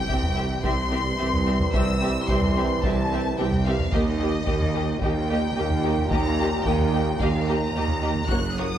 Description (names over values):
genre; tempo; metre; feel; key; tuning
cinematic, epic orchestral film score; 110 BPM; 4/4; straight; unclear; A4 = 436 Hz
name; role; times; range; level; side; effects
rich chamber violin section; melody; 0.0-8.8 s; Eb5 to F#6; -30 LUFS; left 3 dB; none
bright trombone section; sustained chords; 0.0-8.8 s; Bb2 to F#3; -31 LUFS; right 3 dB; none
warm French horn section; sustained chords; 0.0-8.8 s; G3 to A#4; -33 LUFS; left 6 dB; none
dark tuba; bass; 0.0-8.8 s; F#1 to Eb2; -29 LUFS; right 3 dB; none
rich symphonic cello section; bass; 0.0-8.8 s; C2 to F#2; -30 LUFS; right 2 dB; none
rich symphonic double bass section; bass; 0.0-8.8 s; F#1 to Eb2; -30 LUFS; right 2 dB; none
impact; sound effects; 0.0-1.7 s; none; barely audible; none; none
rich symphonic violin section; second line; 0.1-8.7 s; G4 to E5; -34 LUFS; left 4 dB; none
rich symphonic viola section; accompaniment; 0.1-8.7 s; Bb3 to G4; -32 LUFS; right 2 dB; none
solo taiko drums; drums; 0.1-8.8 s; none; -28 LUFS; equal; none
room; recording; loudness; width
moderate scoring stage reverb, RT60 1.8 s; none; -21 LUFS; side -10 dB against mid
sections
0.0-8.8 A section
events
impact 0.0-1.7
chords
0.0 C; 3.9 Eb